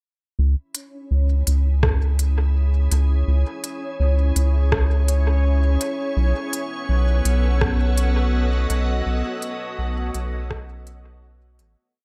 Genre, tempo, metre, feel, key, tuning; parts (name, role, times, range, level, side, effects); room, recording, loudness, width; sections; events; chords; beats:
ambient dub; 83 BPM; 4/4; straight; C# minor; A4 = 440 Hz
soft additive organ-like pad; sustained chords; 1.4-12.0 s; B3 to D#5; -32 LUFS; equal; ensemble chorus, built-in reverb
round analog bass; bass; 0.4-11.8 s; A1 to C#2; -21 LUFS; equal
bubbling stepped-filter texture; texture; 0.8-12.0 s; C#4 to C#5; -33 LUFS; equal; chorus, built-in reverb
organic electronic drum kit; drums; 0.7-11.7 s; hi-hat, rim click, toms; -29 LUFS; equal; overdrive, dub echo
electronic kick drum; drums; 1.8-10.7 s; -27 LUFS; equal
digital ambience; -21 LUFS; mono
0.4-11.9 groove
fade-in on ambient pad 0.4-11.9; fade-out 8.1-11.9
0.4 C#m; 6.2 B7
| 0.38 1.11 1.83 2.55 | 3.27 4.00 4.72 5.44 | 6.17 6.89 7.61 8.34 | 9.06 9.78 10.50 11.23